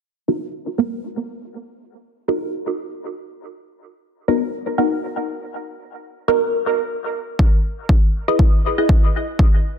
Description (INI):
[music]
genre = dub techno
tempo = 120 BPM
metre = 4/4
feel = swing 56% on 16ths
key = unclear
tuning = A4 = 440 Hz
[part]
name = filtered dub chord stab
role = stabs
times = 0.3-9.0 s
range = B3 to D#5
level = -21 LUFS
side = right 1 dB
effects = phaser, vintage 12-bit sampler grit, sidechain pumping, dub echo
[part]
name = electronic kick drum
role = drums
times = 7.4-9.5 s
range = none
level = -14 LUFS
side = equal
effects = none
[sound]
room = light reverb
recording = dense, heavily limited modern master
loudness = -17 LUFS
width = side -8 dB against mid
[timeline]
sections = 0.0-9.8 A section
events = filter sweep on synth stab 0.0-9.8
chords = 0.0 Bmaj7; 7.4 Badd11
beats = 0.39 0.89 | 1.39 1.89 2.39 2.89 | 3.39 3.89 4.39 4.89 | 5.39 5.89 6.39 6.89 | 7.39 7.89 8.39 8.89 | 9.39